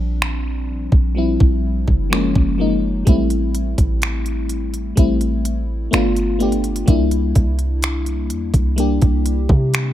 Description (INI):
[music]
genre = contemporary R&B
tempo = 63 BPM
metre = 4/4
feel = straight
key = unclear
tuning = A4 = 440 Hz
[part]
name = FM electric piano with soft pad layer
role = accompaniment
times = 0.0-9.9 s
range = F3 to G4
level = -20 LUFS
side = left 2 dB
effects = chorus, tremolo
[part]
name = warm 808-style bass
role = bass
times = 0.0-9.9 s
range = Gb1 to C3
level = -20 LUFS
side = equal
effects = none
[part]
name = trap drum kit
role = drums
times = 0.2-9.9 s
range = finger snaps, hi-hat, kick drum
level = -17 LUFS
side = equal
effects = none
[sound]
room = digital ambience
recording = none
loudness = -16 LUFS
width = side -12 dB against mid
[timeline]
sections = 0.0-9.9 A section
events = none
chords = 0.0 Bb6; 2.1 Gbmaj7; 3.1 Am7; 5.9 G7; 6.9 C9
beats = 0.21 1.16 2.12 | 3.07 4.02 4.97 5.92 | 6.88 7.83 8.78 9.73